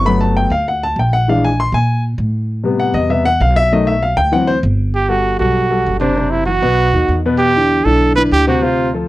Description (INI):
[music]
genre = Afro-Cuban jazz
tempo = 196 BPM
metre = 4/4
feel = straight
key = G major from 4.9 s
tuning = A4 = 440 Hz
[part]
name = warm baby grand piano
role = accompaniment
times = 0.0-9.1 s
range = B2 to C6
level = -15 LUFS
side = left 2 dB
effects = none
[part]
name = upright bass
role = bass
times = 0.0-9.0 s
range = F#1 to A#2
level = -17 LUFS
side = equal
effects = none
[part]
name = clear trumpet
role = melody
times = 4.9-8.9 s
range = D4 to B4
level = -15 LUFS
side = right 3 dB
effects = slapback echo
[sound]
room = light reverb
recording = dry, close 1970s-style studio recording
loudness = -12 LUFS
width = side -17 dB against mid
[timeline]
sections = 0.0-4.9 A section; 4.9-9.1 B section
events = grand piano solo 0.0-4.9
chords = 0.0 Gmaj9; 1.3 A#7#11; 2.5 Am7; 3.7 B7; 4.3 D9; 4.9 Gmaj9; 6.2 D13/F#; 6.8 B; 7.4 Em7